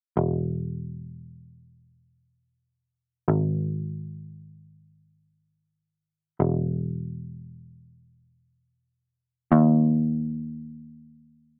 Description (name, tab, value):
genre	dream pop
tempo	free time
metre	none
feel	none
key	E major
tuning	A4 = 440 Hz
part	vintage muted picked electric bass	bass	0.2-11.6 s	E1 to D#2	-26 LUFS	equal	none
room	little or no reverb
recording	rough home demo mix, AM radio sound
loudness	-26 LUFS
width	mono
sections	0.2-11.6 A section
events	none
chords	none